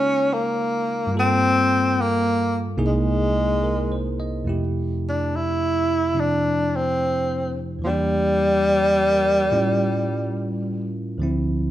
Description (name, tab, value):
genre	jazz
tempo	71 BPM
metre	4/4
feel	swing 69% on 8ths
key	F major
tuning	A4 = 440 Hz
part	breathy tenor saxophone	melody	0.0-11.0 s	F3 to E4	-20 LUFS	equal	none
part	bell-like tine electric piano	accompaniment	0.0-11.7 s	C2 to D#5	-24 LUFS	right 1 dB	none
room	moderate large studio reverb, RT60 1.3 s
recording	dark, warm production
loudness	-19 LUFS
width	side -13 dB against mid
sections	0.0-4.5 A section; 4.5-11.7 B section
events	none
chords	0.0 Db6; 1.1 Gm7; 2.8 C7alt; 4.5 Fmaj7; 7.8 Em7b5; 9.5 A7b13; 11.2 Dm9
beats	0.26 | 1.10 1.95 2.79 3.63 | 4.47 5.31 6.15 6.99 | 7.83 8.68 9.52 10.36 | 11.20